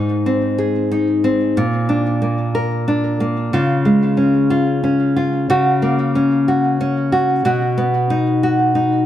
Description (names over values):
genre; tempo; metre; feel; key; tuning
pop; 61 BPM (dotted quarters); 6/8; straight; unclear; A4 = 440 Hz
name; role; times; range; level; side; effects
nylon-string guitar; solo; 0.0-9.1 s; Ab2 to Bb4; -14 LUFS; equal; digital delay
room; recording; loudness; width
moderate echo chamber reverb, RT60 1.3 s; dark, warm production; -14 LUFS; side -11 dB against mid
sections
0.0-3.5 A section; 3.5-9.1 B section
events
none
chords
0.0 Ab; 1.6 Bb; 3.5 Db; 5.5 Gb/Db; 7.4 B